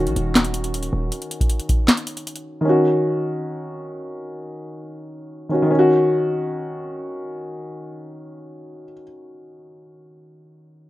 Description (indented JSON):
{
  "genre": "hip hop, trap",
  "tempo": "157 BPM",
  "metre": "4/4",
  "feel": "half-time",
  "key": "Eb minor",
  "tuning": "A4 = 440 Hz",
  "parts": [
    { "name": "dark baby grand piano", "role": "accompaniment", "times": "0.0-10.9 s", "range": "Eb3 to Gb4", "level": "-22 LUFS", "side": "equal", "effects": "low-pass filter" },
    { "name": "hard-hitting 808-style bass", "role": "bass", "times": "0.0-1.1 s", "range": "Eb1 to Bb1", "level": "-25 LUFS", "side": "equal", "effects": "none" },
    { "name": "booming analog drum machine", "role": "drums", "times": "0.1-2.4 s", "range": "handclaps, hi-hat, kick drum, snare drum", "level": "-18 LUFS", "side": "equal", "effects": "none" }
  ],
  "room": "digital ambience",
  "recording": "rough home demo mix",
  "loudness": "-18 LUFS",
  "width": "side -16 dB against mid",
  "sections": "0.0-5.7 A section; 5.7-8.8 B section",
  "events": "none",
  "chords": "0.0 Ebm7"
}